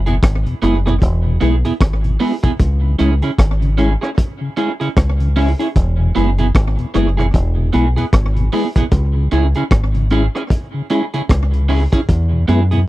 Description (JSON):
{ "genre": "roots reggae", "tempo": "76 BPM", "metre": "4/4", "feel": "swing 59% on 16ths", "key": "E major", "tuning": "A4 = 439 Hz", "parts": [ { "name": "deep dub fingered electric bass", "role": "bass", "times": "0.0-12.8 s", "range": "E1 to F#2", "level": "-15 LUFS", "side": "equal", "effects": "none" }, { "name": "electric guitar at the edge of break-up", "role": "accompaniment", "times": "0.1-12.8 s", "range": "B3 to G#4", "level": "-21 LUFS", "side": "right 4 dB", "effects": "lush chorus, dub echo" }, { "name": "mellow tonewheel organ", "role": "accompaniment", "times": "0.1-12.8 s", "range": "E2 to E4", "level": "-20 LUFS", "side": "left 3 dB", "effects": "chorus vibrato, slow rotary speaker" }, { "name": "crunchy breakbeat drum kit", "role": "drums", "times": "0.1-12.9 s", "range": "hi-hat, kick drum, rim click", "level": "-16 LUFS", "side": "equal", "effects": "none" } ], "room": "studio ambience", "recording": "dry, close 1970s-style studio recording", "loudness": "-13 LUFS", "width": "side -17 dB against mid", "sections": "0.0-12.9 A section", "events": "none", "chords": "0.0 E; 2.6 C#m; 5.8 E; 8.9 C#m; 12.1 E" }